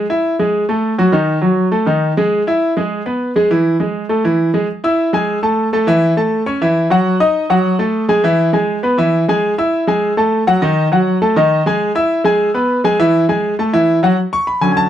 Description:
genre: latin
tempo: 202 BPM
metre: 4/4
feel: straight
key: A major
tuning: A4 = 440 Hz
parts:
  - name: clear baby grand piano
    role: solo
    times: 0.0-14.9 s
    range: D3 to E6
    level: -12 LUFS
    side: equal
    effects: none
room: moderate studio ambience, RT60 0.5 s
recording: dark, warm production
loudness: -12 LUFS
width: side -10 dB against mid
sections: 0.0-4.7 A section; 4.7-14.2 A section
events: none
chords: 0.0 A5; 1.1 D#dim; 2.3 E; 3.5 A5; 5.9 F#m7; 7.1 F#m69; 8.2 E; 9.4 A5; 10.6 D#dim; 11.8 E; 13.0 A5; 14.2 Dmaj7

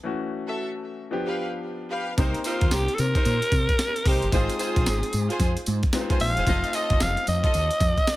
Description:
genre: R&B, new jack swing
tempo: 112 BPM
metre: 4/4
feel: swing 63% on 16ths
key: C minor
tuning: A4 = 443 Hz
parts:
  - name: clear concert grand piano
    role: accompaniment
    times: 0.0-8.2 s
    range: E3 to C5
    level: -32 LUFS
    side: left 3 dB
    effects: none
  - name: warm studio string section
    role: stabs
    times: 0.5-7.6 s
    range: Eb4 to F5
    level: -31 LUFS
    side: right 1 dB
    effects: none
  - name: woody fretless electric bass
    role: bass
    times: 2.2-7.9 s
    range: E1 to C3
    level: -26 LUFS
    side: equal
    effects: ensemble chorus
  - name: breakbeat sampler-style drum kit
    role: drums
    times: 2.2-8.2 s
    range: hi-hat, kick drum, snare drum, tambourine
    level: -25 LUFS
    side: equal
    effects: none
  - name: raspy alto saxophone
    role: melody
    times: 2.5-8.2 s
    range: F4 to F5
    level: -25 LUFS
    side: equal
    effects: none
room: studio ambience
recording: none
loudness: -22 LUFS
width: side -17 dB against mid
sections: 0.0-2.2 A section; 2.2-8.2 B section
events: filter sweep 0.0-2.2; break 0.0-2.2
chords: 0.0 F#m7; 1.1 G7; 2.2 Cm7; 4.3 Ab6; 6.5 F7

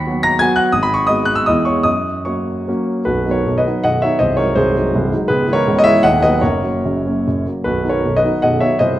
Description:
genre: classical, romantic triple-time dance for piano with dotted rhythms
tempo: 137-188 BPM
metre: 3/4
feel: rubato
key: B major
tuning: A4 = 439 Hz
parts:
  - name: warm grand piano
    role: solo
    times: 0.0-9.0 s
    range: B0 to B6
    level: -14 LUFS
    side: equal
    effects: none
room: moderate recital hall reverb, RT60 1.8 s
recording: none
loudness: -13 LUFS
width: side -14 dB against mid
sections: 0.0-3.1 A section; 3.1-9.0 B section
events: none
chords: 0.0 B/D#; 0.8 G#m7; 1.5 E6; 1.9 F#; 3.1 B; 4.2 G#7/B#; 5.3 C#m; 6.0 B/D#; 6.4 F#; 7.6 B

